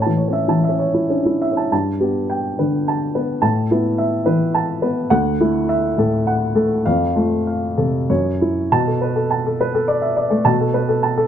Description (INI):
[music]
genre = neoclassical minimalist piano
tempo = 93-108 BPM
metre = 3/4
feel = rubato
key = unclear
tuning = A4 = 440 Hz
[part]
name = dark upright piano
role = solo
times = 0.0-11.3 s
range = D2 to A5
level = -16 LUFS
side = equal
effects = none
[sound]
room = little or no reverb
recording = close, detailed microphones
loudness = -16 LUFS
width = side -9 dB against mid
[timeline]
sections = 0.0-1.7 A section; 1.7-8.7 B section; 8.7-11.3 C section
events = none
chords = 0.0 A; 1.7 Gadd9; 3.4 Asus2; 5.1 Dadd9; 6.8 F; 8.1 F#5; 8.7 Bm7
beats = 0.47 1.10 | 1.71 2.29 2.87 | 3.43 3.99 4.55 | 5.11 5.68 6.26 | 6.84 7.45 8.09 | 8.71 9.30 9.87 | 10.45 11.03